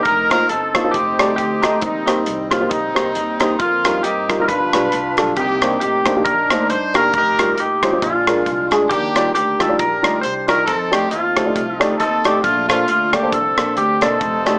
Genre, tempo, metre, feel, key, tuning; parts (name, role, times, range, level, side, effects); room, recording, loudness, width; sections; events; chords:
uptempo gospel; 136 BPM; 4/4; swing 57% on 8ths; Bb major; A4 = 440 Hz
clean lap steel guitar; melody; 0.0-14.6 s; Eb4 to C5; -22 LUFS; equal
clear horn section; melody; 0.0-14.6 s; G3 to C5; -24 LUFS; equal
upright bass; bass; 0.0-14.6 s; E1 to G2; -32 LUFS; equal
crisp fusion drum kit; drums; 0.1-14.6 s; hi-hat, kick drum, rim click; -24 LUFS; equal
dark upright piano; accompaniment; 0.3-14.6 s; G2 to Eb5; -22 LUFS; equal
moderate large studio reverb, RT60 0.8 s, studio ambience; small speaker sound; -17 LUFS; mono
0.0-14.6 A section
0.1 F7sus4; 0.9 F13; 1.8 Eb6; 3.6 F9sus4; 4.5 G7; 5.4 Cm9; 7.1 F9sus4; 8.0 Bb7; 8.9 Ebmaj9; 10.7 F13; 12.4 Bbmaj9